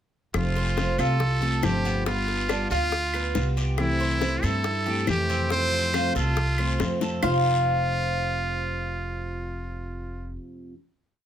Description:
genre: latin, Cuban son and guajira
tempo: 139 BPM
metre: 4/4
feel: straight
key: F major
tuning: A4 = 440 Hz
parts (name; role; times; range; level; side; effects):
- picked steel-string acoustic guitar; accompaniment; 0.3-10.8 s; F2 to F4; -31 LUFS; left 1 dB; none
- upright bass; bass; 0.3-10.4 s; F1 to G2; -28 LUFS; equal; none
- bongos; percussion; 0.3-7.3 s; none; -31 LUFS; left 7 dB; none
- claves; percussion; 0.3-7.3 s; none; -34 LUFS; equal; none
- guiro; percussion; 0.3-7.3 s; none; -38 LUFS; left 2 dB; none
- trumpet with metal mute; melody; 0.4-10.4 s; E4 to C5; -28 LUFS; right 1 dB; none
- Cuban tres; arpeggios; 0.6-10.4 s; B3 to F5; -29 LUFS; right 1 dB; none
room: light reverb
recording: close, detailed microphones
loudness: -22 LUFS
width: side -10 dB against mid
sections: 0.3-7.2 A section; 7.2-10.7 final chord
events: drum fill 6.8-7.2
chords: 0.3 F; 2.1 G7; 3.8 C6; 5.5 F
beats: | 0.34 0.77 1.20 1.63 | 2.06 2.49 2.92 3.35 | 3.78 4.21 4.65 5.08 | 5.51 5.94 6.37 6.80 | 7.23 7.66 8.09 8.52 | 8.95 9.38 9.81 10.24

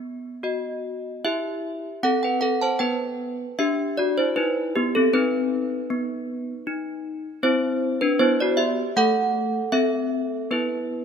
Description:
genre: classical, tune for handbells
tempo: 77 BPM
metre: 4/4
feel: straight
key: E minor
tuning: A4 = 441 Hz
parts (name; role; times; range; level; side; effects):
- desk bells; solo; 0.0-11.0 s; A3 to B5; -22 LUFS; equal; none
room: light reverb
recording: close, detailed microphones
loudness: -21 LUFS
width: side -7 dB against mid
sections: 0.0-1.2 A section; 1.2-11.0 B section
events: none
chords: 0.0 B; 1.2 Em; 4.4 B; 7.4 C; 8.9 F#m7b5/A; 10.5 E5/B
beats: 0.43 | 1.25 2.04 2.81 3.59 | 4.37 5.13 5.90 6.66 | 7.42 8.18 8.95 9.72 | 10.51

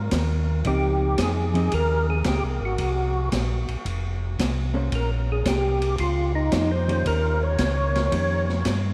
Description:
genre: soul jazz organ trio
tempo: 112 BPM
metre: 4/4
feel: swing 69% on 8ths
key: unclear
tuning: A4 = 441 Hz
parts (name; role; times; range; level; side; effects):
- mellow tonewheel organ; bass; 0.0-8.9 s; F1 to G2; -27 LUFS; equal; slow rotary speaker
- vintage drum kit; drums; 0.1-8.8 s; hi-hat, kick drum, ride cymbal, snare drum; -32 LUFS; equal; none
- hollow-body jazz guitar; accompaniment; 0.6-8.5 s; Eb3 to C5; -35 LUFS; equal; none
- percussive tonewheel organ; melody; 0.7-8.5 s; Eb4 to Db5; -29 LUFS; equal; slow rotary speaker, chorus vibrato
room: wet cathedral reverb, RT60 6.7 s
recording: in a vast, echoing space, vinyl crackle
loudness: -24 LUFS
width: mono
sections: 0.0-8.9 A section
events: none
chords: 0.0 Ab5; 0.6 Dbmaj9; 2.8 Bbsus2; 3.8 F5; 4.9 Bbm9; 7.0 Eb7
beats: 0.11 | 0.64 1.18 1.71 2.25 | 2.78 3.31 3.85 4.38 | 4.91 5.45 5.98 6.52 | 7.05 7.58 8.12 8.65

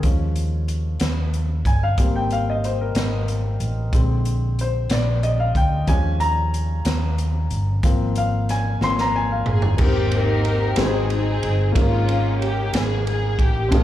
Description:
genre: slow gospel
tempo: 61 BPM (dotted quarters)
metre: 6/8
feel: straight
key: Ab major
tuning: A4 = 440 Hz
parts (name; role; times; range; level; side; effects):
- warm baby grand piano; accompaniment; 0.0-13.8 s; Ab2 to C6; -24 LUFS; left 2 dB; slapback echo
- hollow-body short-scale fingered electric bass; bass; 0.0-13.8 s; G1 to Eb2; -22 LUFS; equal; none
- swinging big-band drum kit; drums; 0.0-13.8 s; crash cymbal, hi-hat, kick drum, ride cymbal, snare drum, toms; -23 LUFS; equal; none
- warm studio string section; melody; 9.5-13.8 s; Ab3 to Bb4; -24 LUFS; equal; slapback echo
room: little or no reverb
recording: live gig heard through the venue's PA, club reverb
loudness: -18 LUFS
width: side -13 dB against mid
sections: 0.0-9.8 A section; 9.8-13.8 B section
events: grand piano solo 0.0-9.8; drum fill 8.8-9.8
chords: 0.0 Eb7sus4; 2.0 Abmaj9; 3.9 Bb7; 5.9 Eb9sus4; 7.8 Ab69; 9.8 Abmaj9; 10.8 Ab7; 11.8 Db6/Ab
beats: | 0.04 1.01 | 1.98 2.96 | 3.93 4.91 | 5.88 6.86 | 7.84 8.81 | 9.79 10.77 | 11.75 12.73 | 13.71

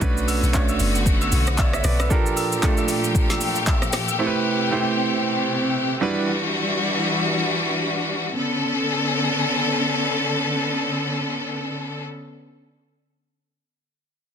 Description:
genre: amapiano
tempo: 115 BPM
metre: 4/4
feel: swing 58% on 16ths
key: unclear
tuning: A4 = 439 Hz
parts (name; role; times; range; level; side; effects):
- clear grand piano; accompaniment; 0.0-6.3 s; G3 to F#5; -24 LUFS; right 5 dB; none
- clear studio string section; sustained chords; 0.0-12.0 s; Bb2 to A4; -22 LUFS; left 2 dB; none
- deep log drum bass; bass; 0.0-2.1 s; F#1 to B1; -22 LUFS; equal; none
- afro-pop drum kit; drums; 0.0-4.2 s; handclaps, hi-hat, kick drum, rim click, shaker, snare drum; -22 LUFS; equal; overdrive
- agogo bells and woodblock; percussion; 0.3-4.2 s; none; -32 LUFS; left 2 dB; none
room: light reverb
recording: dense, heavily limited modern master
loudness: -19 LUFS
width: side -8 dB against mid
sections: 0.0-8.4 A section; 8.4-12.5 B section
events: none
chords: 0.0 Bm9; 2.1 Gm9; 4.2 Am9; 6.0 Em9; 8.4 Bm9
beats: | 0.02 0.54 1.06 1.58 | 2.11 2.63 3.15 3.67 | 4.19 4.71 5.24 5.76 | 6.28 6.80 7.32 7.84 | 8.37 8.89 9.41 9.93 | 10.45 10.97 11.50

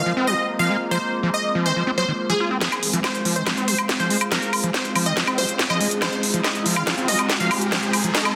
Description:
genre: psychedelic trance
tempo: 141 BPM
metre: 4/4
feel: straight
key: F minor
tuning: A4 = 437 Hz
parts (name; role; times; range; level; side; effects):
- supersaw stab; melody; 0.0-8.3 s; Ab4 to F5; -27 LUFS; equal; phaser, sidechain pumping, dub echo
- overtone-sweeping drone; sustained chords; 0.0-8.4 s; Ab3 to Ab4; -30 LUFS; equal; chorus, built-in reverb, sidechain pumping
- screaming distorted acid line; riff; 0.0-8.1 s; Eb3 to F4; -28 LUFS; equal; distortion, chorus, sidechain pumping, dub echo
- airy breathy pad; texture; 0.0-8.4 s; C4 to Bb5; -34 LUFS; equal; chorus, sidechain pumping
- electronic kick drum; drums; 2.6-8.2 s; none; -33 LUFS; equal; none
- garage drum kit; drums; 2.6-8.3 s; hi-hat, snare drum, woodblock; -24 LUFS; equal; high-pass filter on snare, low-pass filter on snare, high-pass filter on hats, low-pass filter on hats, high-pass filter on perc, low-pass filter on perc, high-pass filter on room, low-pass filter on room
- riser; sound effects; 4.9-8.4 s; none; -34 LUFS; equal; none
room: moderate plate reverb, RT60 1.9 s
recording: dense, heavily limited modern master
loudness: -21 LUFS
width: mono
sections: 0.0-2.6 A section; 2.6-8.4 B section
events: filter sweep on synth drone 0.0-2.6, 2.6-8.4; build-up 2.6-8.4; drum fill 2.6-8.4; riser 4.9-8.4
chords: 0.0 F5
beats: 0.06 0.49 | 0.91 1.34 1.76 2.19 | 2.62 3.04 3.47 3.89 | 4.32 4.74 5.17 5.59 | 6.02 6.45 6.87 7.30 | 7.72 8.15

